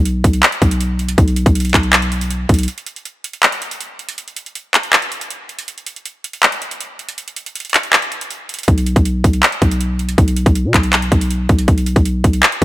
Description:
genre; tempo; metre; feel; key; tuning
hip hop, trap; 160 BPM; 4/4; half-time; unclear; A4 = 440 Hz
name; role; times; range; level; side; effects
growling 808-style bass; bass; 0.0-2.7, 8.7-12.6 s; B1 to B2; -16 LUFS; equal; none
trap drum kit; drums; 0.1-12.6 s; handclaps, hi-hat, kick drum; -14 LUFS; equal; none
room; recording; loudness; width
little or no reverb; none; -12 LUFS; side -16 dB against mid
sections
0.0-2.7 A section; 2.7-12.6 B section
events
break 2.7-8.7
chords
none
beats
0.06 0.43 0.81 | 1.18 1.55 1.93 2.31 | 2.68 3.06 3.43 3.81 | 4.18 4.55 4.93 5.30 | 5.68 6.05 6.43 6.80 | 7.18 7.55 7.93 8.30 | 8.68 9.05 9.43 9.80 | 10.18 10.55 10.93 11.30 | 11.68 12.05 12.43

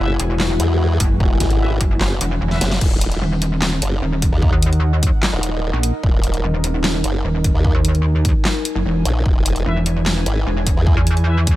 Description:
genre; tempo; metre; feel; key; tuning
heavy wobble dubstep; 149 BPM; 4/4; half-time; Eb phrygian; A4 = 442 Hz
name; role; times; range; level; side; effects
supersaw pad; sustained chords; 0.0-2.8 s; B2 to Gb4; -30 LUFS; right 1 dB; sidechain pumping, low-pass filter
dark brass ensemble; stabs; 0.0-2.7, 9.7-11.4 s; E4 to E5; -32 LUFS; left 1 dB; none
formant-sweep wobble bass; bass; 0.0-11.0 s; Eb1 to E2; -18 LUFS; equal; chorus, overdrive
warbly tape-like pad; texture; 0.0-11.6 s; Eb4 to G#5; -27 LUFS; left 2 dB; chorus, built-in reverb, phaser, sidechain pumping
pulsing pluck wobble bass; bass; 0.2-11.6 s; Eb1 to E2; -17 LUFS; equal; chorus, overdrive
dubstep drum kit; drums; 0.2-11.6 s; crash cymbal, handclaps, hi-hat, snare drum; -23 LUFS; equal; none
electronic kick drum; drums; 1.0-11.6 s; none; -17 LUFS; equal; none
room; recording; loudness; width
little or no reverb; none; -15 LUFS; side -16 dB against mid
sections
0.0-2.8 A section; 2.8-11.6 A section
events
drop 0.0-2.8, 2.8-11.6; drum fill 2.5-2.8; band accent 2.7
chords
0.0 E; 2.8 Ebm; 9.3 E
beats
0.40 0.80 | 1.20 1.60 2.01 2.41 | 2.81 3.22 3.62 4.02 | 4.42 4.83 5.23 5.63 | 6.04 6.44 6.84 7.24 | 7.64 8.05 8.45 8.85 | 9.26 9.66 10.06 10.46 | 10.87 11.27

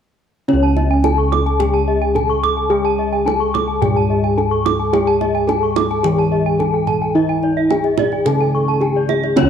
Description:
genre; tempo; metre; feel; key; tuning
Balinese gamelan; 108 BPM; 4/4; straight; C# pelog; A4 = 440 Hz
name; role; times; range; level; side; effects
gamelan-type bronze metallophone; melody; 0.5-9.5 s; C#4 to A4-40c; -19 LUFS; equal; none
gamelan-type bronze metallophone; accompaniment; 0.5-9.5 s; C#3 to A3-40c; -26 LUFS; left 11 dB; none
gamelan-type bronze metallophone; arpeggios; 0.5-9.5 s; C#5 to C#6; -23 LUFS; left 9 dB; none
gamelan-type bossed gongs; bass; 0.5-9.5 s; C#2 to G#4-45c; -19 LUFS; equal; none
kendang; percussion; 0.5-9.5 s; none; -23 LUFS; right 11 dB; none
gamelan-type bronze metallophone; arpeggios; 0.6-9.2 s; D5 to D6; -23 LUFS; right 7 dB; none
room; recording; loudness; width
moderate echo chamber reverb, RT60 2.4 s; 1960s-style stereo with parts hard left and right; -14 LUFS; side -8 dB against mid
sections
0.5-9.5 A section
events
none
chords
none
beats
| 0.48 1.04 1.59 2.15 | 2.71 3.26 3.82 4.37 | 4.93 5.48 6.04 6.59 | 7.15 7.71 8.26 8.82 | 9.37

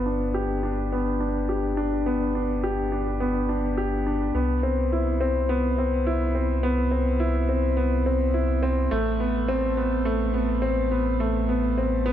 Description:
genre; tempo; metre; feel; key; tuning
piano and strings electronica; 105 BPM; 4/4; straight; C major; A4 = 440 Hz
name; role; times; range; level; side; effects
warm concert grand piano; riff; 0.0-12.1 s; A3 to G4; -24 LUFS; equal; digital delay, shimmer reverb
round analog bass; bass; 0.0-12.1 s; G1 to C2; -27 LUFS; equal; none
room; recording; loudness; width
moderate concert hall reverb, RT60 2.3 s; low-pass filter; -22 LUFS; side -10 dB against mid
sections
0.0-12.1 A section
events
filter sweep 0.0-12.1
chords
0.0 G; 4.3 Cmaj7; 8.9 Amadd9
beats
0.34 0.92 1.49 | 2.06 2.63 3.20 3.77 | 4.34 4.92 5.49 6.06 | 6.63 7.20 7.77 8.34 | 8.91 9.49 10.06 10.63 | 11.20 11.77

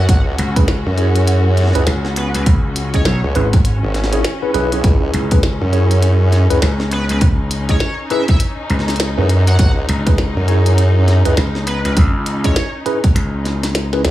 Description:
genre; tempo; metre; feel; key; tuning
glitch hop; 101 BPM; 4/4; swing 60% on 16ths; C# minor; A4 = 440 Hz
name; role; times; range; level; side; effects
sync lead; melody; 0.0-3.2, 6.9-12.7 s; B4 to F#5; -27 LUFS; equal; chorus, tape echo
formant-sweep wobble bass; bass; 0.0-14.1 s; G#1 to F#2; -13 LUFS; equal; chorus, tube saturation
dark chamber string section; texture; 0.0-14.1 s; C#4 to F#4; -26 LUFS; left 2 dB; sidechain pumping
electronic kick drum; drums; 0.1-13.1 s; none; -14 LUFS; equal; overdrive
glitchy drum kit; drums; 0.1-14.1 s; hi-hat, snare drum; -23 LUFS; equal; overdrive
gritty slap bass; bass; 0.4-14.0 s; G#1 to C#2; -18 LUFS; equal; overdrive
mellow tine electric piano; stabs; 0.6-14.0 s; C#4 to D#5; -22 LUFS; right 1 dB; medium stereo tremolo, sidechain pumping, tape echo
room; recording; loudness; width
digital ambience; small room ambience, faint mains hum; -13 LUFS; side -14 dB against mid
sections
0.0-14.1 A section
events
drum fill 13.9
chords
0.0 C#m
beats
| 0.09 0.68 1.27 1.87 | 2.46 3.06 3.65 4.24 | 4.84 5.43 6.03 6.62 | 7.21 7.81 8.40 9.00 | 9.59 10.18 10.78 11.37 | 11.97 12.56 13.15 13.75

